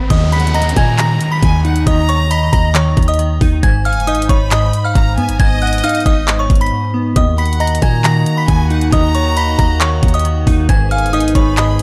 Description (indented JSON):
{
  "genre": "hip hop, trap",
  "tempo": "136 BPM",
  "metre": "4/4",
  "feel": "half-time",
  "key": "Eb minor",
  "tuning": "A4 = 440 Hz",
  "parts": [
    { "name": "delicate synth tine bell", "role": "melody", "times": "0.0-11.8 s", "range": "Db5 to Cb7", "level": "-22 LUFS", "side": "equal", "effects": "chorus" },
    { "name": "warm 808-style bass", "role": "bass", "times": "0.0-11.8 s", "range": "Gb1 to Bb2", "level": "-19 LUFS", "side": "equal", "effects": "none" },
    { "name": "riser and downlifter", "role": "sound effects", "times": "0.0-3.6 s", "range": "none", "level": "-29 LUFS", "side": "equal", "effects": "none" },
    { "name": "glassy digital keys", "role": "accompaniment", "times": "0.1-11.8 s", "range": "Ab2 to Eb5", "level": "-20 LUFS", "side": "equal", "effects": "chorus" },
    { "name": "trap drum kit", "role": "drums", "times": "0.1-11.8 s", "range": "handclaps, hi-hat, kick drum", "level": "-18 LUFS", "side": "equal", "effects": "none" },
    { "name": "bright chamber violin section", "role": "second line", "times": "0.3-11.8 s", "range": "Eb5 to Cb6", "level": "-26 LUFS", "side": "equal", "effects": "delay" },
    { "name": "warm brass ensemble", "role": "sustained chords", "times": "7.2-11.8 s", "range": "Eb3 to Ab4", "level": "-27 LUFS", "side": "equal", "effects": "none" }
  ],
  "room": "digital ambience",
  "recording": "none",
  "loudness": "-14 LUFS",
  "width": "mono",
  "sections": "0.1-11.8 A section",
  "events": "break 6.7-7.2",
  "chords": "0.1 Eb5; 3.6 Abm; 7.2 Ebm; 10.7 Abm"
}